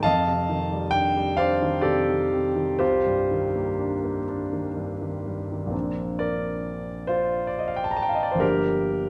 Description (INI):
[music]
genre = classical, impressionist solo piano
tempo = 40-46 BPM (dotted quarters)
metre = 6/8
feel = rubato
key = Bb major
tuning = A4 = 439 Hz
[part]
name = warm concert grand piano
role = solo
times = 0.0-9.1 s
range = G1 to Bb5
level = -25 LUFS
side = equal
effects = none
[sound]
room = wet recital hall reverb, RT60 1.3 s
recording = dark, warm production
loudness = -25 LUFS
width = mono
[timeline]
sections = 0.0-5.7 A section; 5.7-9.1 B section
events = none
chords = 0.0 F13; 2.8 Cm11; 5.7 Bbadd9; 8.4 Gm7